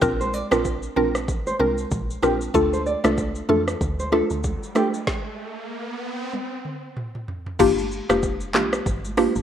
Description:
afrobeats; 95 BPM; 4/4; swing 58% on 16ths; G minor; A4 = 440 Hz
mallet-like synth pluck; accompaniment; 0.0-9.4 s; A3 to Bb4; -21 LUFS; equal; chorus, phaser
deep log drum bass; bass; 0.0-9.4 s; F1 to F2; -29 LUFS; equal
afro-pop drum kit; drums; 0.0-9.4 s; crash cymbal, handclaps, hi-hat, kick drum, rim click, shaker, snare drum, toms; -27 LUFS; equal; overdrive
nylon-string guitar; riff; 0.2-4.9 s; G4 to D5; -29 LUFS; right 2 dB; digital delay
congas; percussion; 0.2-9.3 s; -35 LUFS; equal
riser; sound effects; 4.3-6.3 s; -34 LUFS; right 1 dB
light reverb; rough home demo mix; -20 LUFS; side -9 dB against mid
0.0-7.6 A section; 7.6-9.4 B section
riser 4.3-7.6; stop 5.1-7.6; drum fill 6.3-7.6
0.0 Bbadd9; 2.5 Dm; 5.1 N.C.; 7.6 Gm7
| 0.02 0.65 1.28 1.91 | 2.55 3.18 3.81 4.44 | 5.07 5.70 6.33 6.97 | 7.60 8.23 8.86

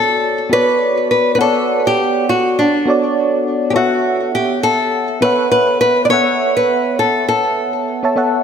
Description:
sunset chillout; 102 BPM; 4/4; swing 58% on 16ths; B minor; A4 = 438 Hz
nylon-string guitar; melody; 0.0-8.1 s; D4 to D5; -15 LUFS; equal; ping-pong delay
mellow FM electric piano; accompaniment; 0.0-8.4 s; B3 to A5; -17 LUFS; moving between left 5 dB and right 4 dB; chorus, auto-pan, ping-pong delay
wet lush hall reverb, RT60 2.2 s; -13 LUFS; side -7 dB against mid
0.0-8.4 A section
0.0 Bm7; 3.8 B9sus4
0.23 0.82 | 1.41 1.99 2.58 3.17 | 3.76 4.35 4.93 5.52 | 6.11 6.70 7.29 7.88

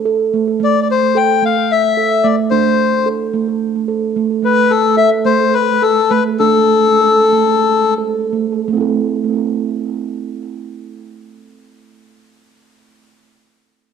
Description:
world meditative; 165-220 BPM (eighths); 7/8; straight; A minor; A4 = 440 Hz
steel tongue drum; arpeggios; 0.0-13.0 s; A3 to A4; -16 LUFS; right 8 dB; tape echo
melodica; melody; 0.6-7.9 s; A4 to G5; -12 LUFS; left 6 dB; cassette tape
wet spring reverb, RT60 1.6 s, studio reverb; home recording on cassette; -12 LUFS; side -7 dB against mid
0.0-8.7 A section; 8.7-13.8 B section
slowing down 4.4-8.7
0.0 D5; 0.6 A5; 2.5 D5; 4.4 Asus2; 6.4 D5; 8.7 Am
0.06 0.33 | 0.60 0.88 1.15 1.42 1.69 1.97 2.24 | 2.51 2.79 3.06 3.33 3.60 3.88 4.15 | 4.42 4.70 4.97 5.25 5.53 5.82 6.11 | 6.40 6.70 7.01 7.33 7.65 7.98 8.33 | 8.68 9.04 9.41 9.77 10.13 10.50 10.86 | 11.22 11.59 11.95 12.31 12.68

